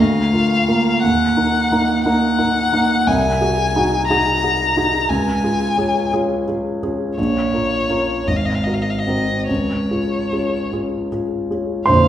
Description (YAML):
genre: classical, romantic duo for violin and grand piano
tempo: 48-60 BPM (dotted quarters)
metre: 6/8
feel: rubato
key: Db major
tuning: A4 = 439 Hz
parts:
  - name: rich violin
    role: melody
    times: 0.0-12.1 s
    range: Db5 to Bb5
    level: -20 LUFS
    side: left 3 dB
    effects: none
  - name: clear grand piano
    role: accompaniment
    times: 0.0-12.1 s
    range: Bb0 to C6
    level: -17 LUFS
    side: right 1 dB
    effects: none
room: wet recital hall reverb, RT60 1.4 s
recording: heard from further back in the room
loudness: -16 LUFS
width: side -11 dB against mid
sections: 0.0-11.9 A section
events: none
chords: 0.0 Bb/D; 1.0 Ebm; 3.1 Ab7/C; 5.1 Db; 7.2 Bbm; 8.3 Ab9; 9.5 Db